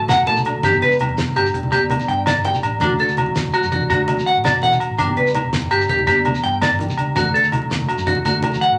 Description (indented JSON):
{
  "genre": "highlife guitar band",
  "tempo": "110 BPM (dotted quarters)",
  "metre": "12/8",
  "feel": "straight",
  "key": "D major",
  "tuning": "A4 = 439 Hz",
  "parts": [
    { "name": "nylon-string guitar", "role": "accompaniment", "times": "0.0-8.8 s", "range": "G2 to A4", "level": "-28 LUFS", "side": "equal", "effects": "none" },
    { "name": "fingered electric bass", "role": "bass", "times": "0.0-8.8 s", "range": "E1 to D3", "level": "-29 LUFS", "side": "equal", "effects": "none" },
    { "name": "clean electric guitar", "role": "arpeggios", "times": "0.1-8.7 s", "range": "D4 to A5", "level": "-20 LUFS", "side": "equal", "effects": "none" },
    { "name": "damped 70s drum kit", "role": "drums", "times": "0.1-8.7 s", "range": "hi-hat, kick drum, snare drum", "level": "-29 LUFS", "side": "equal", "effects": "none" },
    { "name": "agogo bells", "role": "percussion", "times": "0.1-8.6 s", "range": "none", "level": "-25 LUFS", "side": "equal", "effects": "none" },
    { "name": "congas", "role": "percussion", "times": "0.1-8.6 s", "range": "none", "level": "-28 LUFS", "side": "equal", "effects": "none" },
    { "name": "shekere", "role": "percussion", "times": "0.1-8.6 s", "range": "none", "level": "-35 LUFS", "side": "equal", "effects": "none" }
  ],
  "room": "wet club reverb, RT60 0.7 s",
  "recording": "none",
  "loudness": "-18 LUFS",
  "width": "mono",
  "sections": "0.0-8.8 A section",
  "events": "none",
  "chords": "0.0 D; 0.6 G; 2.8 D; 5.0 G; 7.2 D",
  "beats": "0.10 | 0.64 1.19 1.73 2.27 | 2.82 3.36 3.91 4.45 | 4.99 5.54 6.08 6.62 | 7.17 7.71 8.25"
}